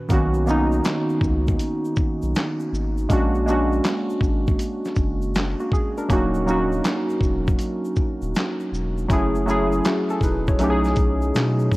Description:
lo-fi hip hop; 80 BPM; 4/4; swing 66% on 16ths; B major; A4 = 441 Hz
warm analog keys; accompaniment; 0.0-11.8 s; A#2 to C#5; -22 LUFS; equal; chorus, cassette tape, low-pass filter
saturated sub bass; bass; 0.1-11.8 s; D#1 to B2; -24 LUFS; equal
dusty soul sampler-style drum kit; drums; 0.1-11.8 s; handclaps, hi-hat, kick drum, shaker, snare drum; -23 LUFS; equal
egg shaker; percussion; 0.1-11.8 s; -49 LUFS; left 4 dB
light reverb; worn, warbling old tape, cassette tape, warbly pitch drift; -19 LUFS; side -19 dB against mid
0.1-11.8 A section
0.1 Bmaj9; 3.1 A#7alt; 6.1 D#m7; 9.1 F#m7; 10.6 B13

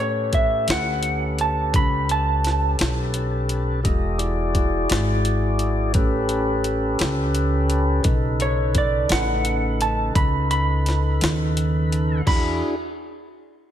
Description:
slow blues; 57 BPM (dotted quarters); 12/8; straight; A4 = 440 Hz
electric slide guitar; second line; 0.0-12.6 s; C#5 to B5; -24 LUFS; right 2 dB; slapback echo
tonewheel organ; sustained chords; 0.0-12.8 s; C#3 to D#5; -26 LUFS; left 1 dB; slow rotary speaker
upright bass; bass; 0.0-12.6 s; E1 to A2; -23 LUFS; equal
jungle sampler-style drum kit; drums; 0.3-12.4 s; crash cymbal, hi-hat, kick drum, snare drum; -23 LUFS; equal
light reverb; -19 LUFS; side -10 dB against mid
0.0-12.3 A section; 12.3-13.7 B section
electric slide guitar solo 0.0-12.3
0.0 A9; 3.8 E9; 6.0 A9; 8.1 B9; 12.3 E9

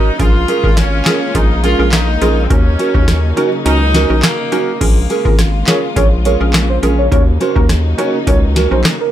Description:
dancehall; 104 BPM; 4/4; straight; Bb minor; A4 = 444 Hz
warm horn section; second line; 0.0-4.8 s; Bb3 to F4; -20 LUFS; left 1 dB; ping-pong delay
hollow square pluck; accompaniment; 0.0-9.1 s; Db4 to Bb4; -21 LUFS; right 3 dB; chorus
warm studio string section; sustained chords; 0.0-9.1 s; Db3 to F4; -23 LUFS; left 1 dB; sidechain pumping
nylon-string guitar; arpeggios; 0.0-8.8 s; Db4 to Bb4; -19 LUFS; right 3 dB; ping-pong delay
round analog bass; bass; 0.2-8.8 s; Ab1 to Eb2; -15 LUFS; equal
booming analog drum machine; drums; 0.2-9.0 s; crash cymbal, handclaps, hi-hat, kick drum, rim click, snare drum; -14 LUFS; equal
soft octave-layered synth lead; melody; 5.3-9.1 s; Bb4 to Db5; -20 LUFS; right 1 dB; chorus, phaser
little or no reverb; -10 LUFS; side -11 dB against mid
0.0-4.8 A section; 4.8-9.1 B section
kick muted 3.7-4.8
0.2 Bbm7; 2.5 Ebm7; 4.8 Bbm7; 7.1 Ebm7

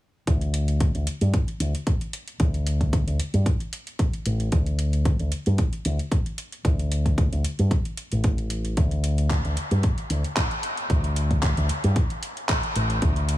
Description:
nu-disco, nu disco; 113 BPM; 4/4; swing 54% on 16ths; A4 = 439 Hz
fingered electric bass with an envelope filter; bass; 0.3-13.4 s; A1 to G2; -23 LUFS; equal
electronic kick drum; drums; 0.3-13.1 s; -24 LUFS; equal
pop drum kit; drums; 0.3-13.4 s; handclaps, hi-hat; -31 LUFS; equal
little or no reverb; small room ambience; -22 LUFS; side -15 dB against mid
0.3-13.4 A section
filter sweep on fingered electric bass 0.3-13.4

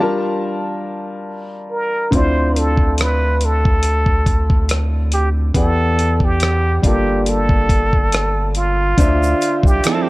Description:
R&B, neo-soul; 70 BPM; 4/4; swing 55% on 16ths; D minor; A4 = 440 Hz
clear grand piano; accompaniment; 0.0-10.1 s; D3 to A5; -21 LUFS; left 1 dB
trumpet with plunger mute; melody; 1.7-10.1 s; F4 to C5; -20 LUFS; right 1 dB
rubbery square bass; bass; 2.1-9.8 s; G1 to E2; -18 LUFS; equal
dusty soul sampler-style drum kit; drums; 2.1-10.1 s; hi-hat, kick drum, rim click; -17 LUFS; equal
tube shaker and finger snaps; percussion; 9.0-10.1 s; -33 LUFS; right 3 dB
clean electric guitar; second line; 9.8-10.1 s; F3 to A4; -16 LUFS; right 6 dB
little or no reverb; -14 LUFS; side -20 dB against mid
0.0-9.0 A section; 9.0-10.1 B section
0.0 Gm9; 2.1 Dm9; 5.6 Em9; 6.8 Gm9; 9.0 Dm9

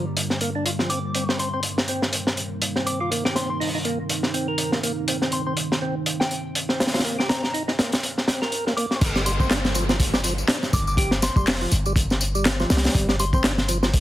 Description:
breakbeat, breaks; 122 BPM; 4/4; swing 57% on 16ths; G minor; A4 = 440 Hz
deep dark ambient pad; sustained chords; 0.0-9.0 s; G3 to C5; -30 LUFS; right 1 dB; chorus, built-in reverb, vintage 12-bit sampler grit, sidechain pumping
percussive tonewheel organ; riff; 0.0-13.9 s; F3 to Bb4; -29 LUFS; right 1 dB; overdrive, stopped rotary speaker, dub echo
crunchy breakbeat drum kit; drums; 0.2-14.0 s; crash cymbal, hi-hat, kick drum, snare drum; -22 LUFS; equal; high-pass filter on kick, high-pass filter on hats, high-pass filter on cymbals, high-pass filter on snare, high-pass filter on room
soft synth bell; melody; 0.9-13.4 s; G5 to D6; -31 LUFS; left 1 dB; chorus, telephone sound, dub echo
warm 808-style bass; bass; 9.0-14.0 s; F1 to C2; -25 LUFS; equal
electronic tambourine and handclaps; drums; 9.0-14.0 s; -30 LUFS; left 2 dB
downlifter; sound effects; 9.0-12.9 s; -34 LUFS; right 1 dB
light reverb; heavily compressed radio sound; -20 LUFS; side -14 dB against mid
0.0-9.0 A section; 9.0-14.0 B section
filter sweep on tonewheel organ 0.0-9.0; filter sweep on ambient pad 0.0-9.0; drop 9.0-14.0
0.0 Gm7; 0.9 Cm7; 9.0 G5

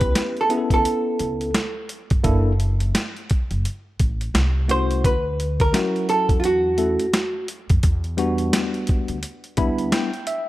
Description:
hip hop, jazz-hop; 86 BPM; 4/4; swing 61% on 16ths; E dorian; A4 = 440 Hz
vintage hollow-body jazz guitar; melody; 0.0-7.5 s; F4 to C5; -22 LUFS; right 1 dB
tine electric piano; accompaniment; 0.0-10.5 s; F#3 to B5; -24 LUFS; left 1 dB; overdrive, slow stereo tremolo
upright bass; bass; 0.0-9.9 s; F#1 to F2; -23 LUFS; equal
boom bap sampler-style drum kit; drums; 0.0-10.5 s; hi-hat, kick drum, snare drum; -22 LUFS; equal
light reverb; dark, warm production; -19 LUFS; side -16 dB against mid
0.0-10.5 A section
tine electric piano fill 9.2-10.5
0.0 C#m7b5; 2.2 F#7alt; 4.3 C; 5.0 Dmaj7; 7.8 Em7

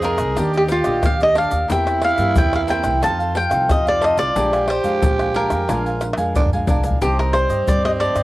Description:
samba and choro; 90 BPM; 4/4; straight; A4 = 442 Hz
cavaquinho; melody; 0.0-8.2 s; F4 to A5; -19 LUFS; equal; cassette tape
growling tenor saxophone; second line; 0.0-8.2 s; C4 to Ab4; -24 LUFS; right 3 dB; cassette tape
cavaquinho; accompaniment; 0.0-8.2 s; D4 to Ab5; -27 LUFS; right 1 dB; cassette tape
nylon-string guitar; accompaniment; 0.0-8.2 s; Bb2 to D5; -29 LUFS; left 1 dB; cassette tape
upright bass; bass; 0.0-8.2 s; Bb1 to G2; -24 LUFS; equal
egg shaker, pandeiro, tamborim and surdo; percussion; 0.0-8.2 s; -21 LUFS; left 1 dB
light reverb; home recording on cassette; -16 LUFS; side -17 dB against mid
0.0-7.0 A section; 7.0-8.2 B section
drum fill 6.0-7.0
0.4 Ebmaj7; 1.7 C7/E; 3.0 F7; 4.4 Bb7; 7.0 Cmadd9

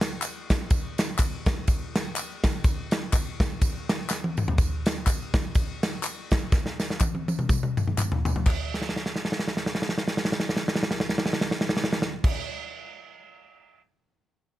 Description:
gospel; 124 BPM; 4/4; swing 57% on 8ths
natural country drum kit; drums; 0.0-13.8 s; crash cymbal, kick drum, ride cymbal, snare drum, toms; -24 LUFS; equal
tambourine and handclaps; percussion; 0.0-12.3 s; -35 LUFS; left 2 dB
little or no reverb; -24 LUFS; side -15 dB against mid
0.0-4.6 A section; 4.6-8.5 B section; 8.5-12.3 C section
drum fill 4.1-4.6, 6.5-8.5, 8.7-12.2

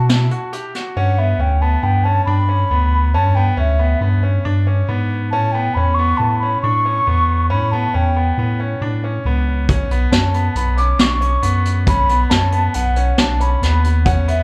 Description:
progressive instrumental, band music in an uneven meter; 138 BPM; 5/4; straight; A4 = 440 Hz
mellow hollow wooden flute; melody; 0.0-14.4 s; E5 to D6; -22 LUFS; equal; plate reverb, slapback echo, tape echo
bright concert grand piano; arpeggios; 0.0-14.4 s; B3 to G4; -26 LUFS; equal; plate reverb, slapback echo, tape echo
warm sub bass; bass; 0.0-14.4 s; B1 to B2; -19 LUFS; equal
vintage brush drum kit; drums; 0.1-0.8, 9.7-14.4 s; hi-hat, kick drum, snare drum; -21 LUFS; equal
light reverb; live gig heard through the venue's PA, club reverb; -17 LUFS; mono
1.0-14.4 A section
0.0 B7(no3); 1.0 G; 5.3 Aadd9; 9.7 B7(no3)

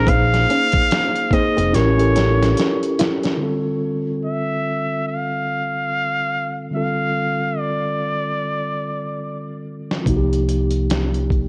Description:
R&B, neo-soul; 72 BPM; 4/4; swing 59% on 16ths; D phrygian from 3.4 s; A4 = 441 Hz
trumpet with straight mute; melody; 0.0-9.7 s; Bb4 to F5; -24 LUFS; equal
nylon-string guitar; second line; 0.0-3.4 s; C4 to E4; -27 LUFS; equal
mellow tine electric piano; accompaniment; 0.0-11.5 s; D3 to C5; -25 LUFS; equal
fingered electric bass; bass; 0.0-2.5, 10.1-11.5 s; F1 to C2; -21 LUFS; equal; tube saturation
dusty soul sampler-style drum kit; drums; 0.1-3.4, 9.9-11.5 s; hi-hat, kick drum, snare drum; -24 LUFS; equal
little or no reverb; worn, warbling old tape, cassette tape, warbly pitch drift; -20 LUFS; mono
0.0-3.4 A section; 3.4-11.5 B section
drum fill 1.7-3.4, 8.4-10.1
0.0 Bb7sus2; 1.7 A7b9; 3.4 Dm11; 10.1 Cm7

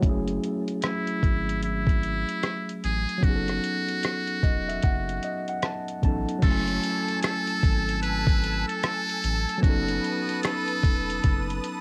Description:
lo-fi hip hop; 75 BPM; 4/4; swing 62% on 16ths; F# dorian; A4 = 439 Hz
tine electric piano; accompaniment; 0.0-11.8 s; F#3 to A5; -32 LUFS; equal; cassette tape, low-pass filter
soft dub sub bass; bass; 0.0-11.6 s; E1 to A1; -33 LUFS; equal; transformer saturation
lo-fi sampler-style drum kit; drums; 0.0-11.8 s; crash cymbal, hi-hat, kick drum, rim click; -27 LUFS; equal; cassette tape
trumpet with metal mute; melody; 0.8-11.6 s; E4 to B4; -32 LUFS; equal; low-pass filter, cassette tape
lush unison pad; sustained chords; 6.7-11.8 s; A4 to E6; -38 LUFS; equal; chorus, cassette tape
finger snap; percussion; 7.2-10.7 s; -44 LUFS; equal
light reverb; home recording on cassette; -26 LUFS; mono
0.0-6.4 A section; 6.4-11.8 B section
tine electric piano fill 4.0-6.4
0.0 F#m9; 3.2 B7; 6.4 F#m9; 9.6 B7

